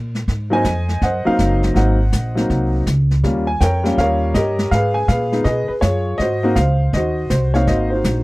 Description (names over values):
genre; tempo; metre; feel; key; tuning
jazz piano trio; 162 BPM; 4/4; swing 64% on 8ths; Ab mixolydian; A4 = 440 Hz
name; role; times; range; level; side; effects
upright bass; bass; 0.0-8.2 s; Gb1 to Cb3; -18 LUFS; equal; none
vintage brush drum kit; drums; 0.1-8.2 s; brushed snare drum, hi-hat, kick drum, snare drum; -23 LUFS; equal; none
warm upright piano; melody; 0.5-8.2 s; Gb3 to Ab5; -18 LUFS; equal; none
room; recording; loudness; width
little or no reverb; dry, close 1970s-style studio recording; -15 LUFS; side -21 dB against mid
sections
0.0-8.2 A section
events
none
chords
0.3 Ab7; 3.2 Eb7; 4.7 Db7; 6.2 Ab7